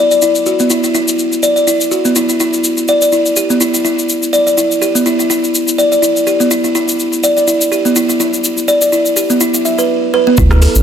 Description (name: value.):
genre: afro house.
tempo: 124 BPM.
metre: 4/4.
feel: swing 56% on 16ths.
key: E minor.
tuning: A4 = 440 Hz.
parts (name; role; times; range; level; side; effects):
buzzing kalimba; arpeggios; 0.0-10.7 s; B3 to E5; -11 LUFS; equal; sidechain pumping, ping-pong delay.
deep house drum kit; drums; 0.1-10.8 s; cabasa, hi-hat, rim click; -18 LUFS; left 2 dB; none.
round analog bass; bass; 10.4-10.8 s; A1 to D2; -9 LUFS; equal; sidechain pumping.
electronic kick drum; drums; 10.4-10.5 s; none; -14 LUFS; equal; none.
room: moderate lush hall reverb, RT60 1.8 s.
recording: none.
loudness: -10 LUFS.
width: side -8 dB against mid.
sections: 0.0-10.4 A section.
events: none.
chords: 0.0 Dsus2; 2.6 E7(no3).